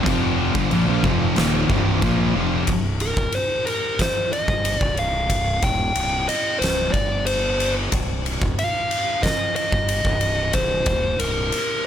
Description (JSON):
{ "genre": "stoner and doom metal", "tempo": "92 BPM", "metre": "4/4", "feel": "straight", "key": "C minor", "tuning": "A4 = 436 Hz", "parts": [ { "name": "tonewheel organ", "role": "sustained chords", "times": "0.0-2.6 s", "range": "C4 to D5", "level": "-32 LUFS", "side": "right 1 dB", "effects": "slow rotary speaker, chorus vibrato" }, { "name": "high-gain distorted guitar", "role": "riff", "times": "0.0-2.7 s", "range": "C2 to Bb3", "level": "-27 LUFS", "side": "equal", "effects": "distortion" }, { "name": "thick fuzz guitar", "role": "riff", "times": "0.0-2.7 s", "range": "C2 to Bb3", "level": "-23 LUFS", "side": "left 9 dB", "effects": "distortion" }, { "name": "thick fuzz guitar", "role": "riff", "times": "0.0-2.7 s", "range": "C2 to Bb3", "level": "-24 LUFS", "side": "right 11 dB", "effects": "distortion" }, { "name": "fuzz fingered electric bass", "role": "bass", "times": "0.0-11.5 s", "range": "C1 to Bb1", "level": "-26 LUFS", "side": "equal", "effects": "overdrive, tube saturation" }, { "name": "oversized low-tuned drum kit", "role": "drums", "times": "0.1-11.7 s", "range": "crash cymbal, kick drum, ride cymbal, snare drum", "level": "-23 LUFS", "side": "equal", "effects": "none" }, { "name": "fuzz lead guitar", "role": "melody", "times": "3.0-11.8 s", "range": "Bb4 to G5", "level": "-23 LUFS", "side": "equal", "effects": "distortion, ping-pong delay" } ], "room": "small room ambience", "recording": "none", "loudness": "-19 LUFS", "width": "side -10 dB against mid", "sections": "0.0-2.7 A section; 2.7-11.9 B section", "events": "none", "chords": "0.0 Cm; 6.9 Gsus4; 7.9 Cm" }